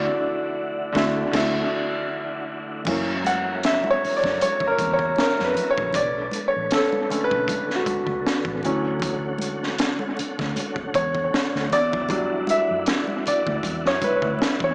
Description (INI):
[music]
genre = R&B, neo-soul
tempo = 78 BPM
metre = 4/4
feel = swing 54% on 16ths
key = D major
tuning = A4 = 438 Hz
[part]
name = vibraphone with medium hard mallets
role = melody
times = 0.0-2.1 s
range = D5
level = -32 LUFS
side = equal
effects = analog delay
[part]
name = clear concert grand piano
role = accompaniment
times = 0.0-14.7 s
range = D3 to F#5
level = -25 LUFS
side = equal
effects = analog delay
[part]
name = tonewheel organ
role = sustained chords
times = 0.0-14.7 s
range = D3 to A#4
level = -35 LUFS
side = equal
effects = slow rotary speaker, chorus vibrato
[part]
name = vintage muted fingered electric bass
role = bass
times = 0.0-14.7 s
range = A1 to F#2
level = -34 LUFS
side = equal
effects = none
[part]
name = crunchy breakbeat drum kit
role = drums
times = 1.0-14.7 s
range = crash cymbal, hi-hat, kick drum, snare drum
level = -29 LUFS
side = equal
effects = analog delay
[part]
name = congas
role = percussion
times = 2.9-14.6 s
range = none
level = -40 LUFS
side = equal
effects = analog delay
[sound]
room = moderate echo chamber reverb, RT60 2.5 s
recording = echo-heavy mix, small speaker sound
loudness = -23 LUFS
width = mono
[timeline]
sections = 0.0-2.9 A section; 2.9-14.7 B section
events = band accent 0.0-2.9; break 2.1-2.9; grand piano solo 2.9-14.7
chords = 0.0 Dadd9; 2.9 F#7; 6.0 Bm9; 8.6 Dmaj7; 11.7 Em9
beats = 0.56 1.33 2.10 | 2.87 3.64 4.41 5.18 | 5.95 6.72 7.49 8.26 | 9.03 9.80 10.56 11.33 | 12.10 12.87 13.64 14.41